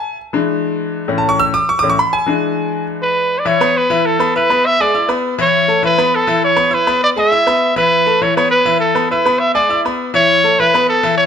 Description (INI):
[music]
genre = latin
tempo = 202 BPM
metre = 4/4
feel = straight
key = A major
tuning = A4 = 445 Hz
[part]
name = bright grand piano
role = accompaniment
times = 0.0-11.3 s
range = A2 to E6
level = -16 LUFS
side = left 2 dB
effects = none
[part]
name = clear trumpet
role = melody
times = 3.0-11.2 s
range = A4 to E5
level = -13 LUFS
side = right 1 dB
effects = none
[sound]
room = moderate large studio reverb, RT60 1.3 s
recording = close, detailed microphones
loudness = -12 LUFS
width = side -7 dB against mid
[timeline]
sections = 0.0-3.5 A section; 3.5-11.3 B section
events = grand piano solo 0.0-3.5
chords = 0.0 E7; 1.1 A; 2.3 E7; 3.5 Aadd9; 4.6 E7; 5.8 Aadd9; 7.0 E; 8.2 Asus2; 9.4 E7; 10.6 Asus2